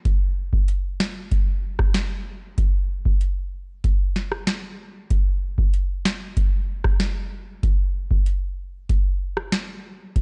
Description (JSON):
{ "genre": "dancehall", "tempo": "95 BPM", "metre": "4/4", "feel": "straight", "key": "none", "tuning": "none", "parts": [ { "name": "booming analog drum machine", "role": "drums", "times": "0.1-10.2 s", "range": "hi-hat, kick drum, rim click, snare drum", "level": "-23 LUFS", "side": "equal", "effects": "vintage 12-bit sampler grit" } ], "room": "little or no reverb", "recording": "dark, warm production, nothing above 10.4 kHz", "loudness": "-23 LUFS", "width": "mono", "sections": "0.0-5.1 A section; 5.1-10.2 B section", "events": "none", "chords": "none" }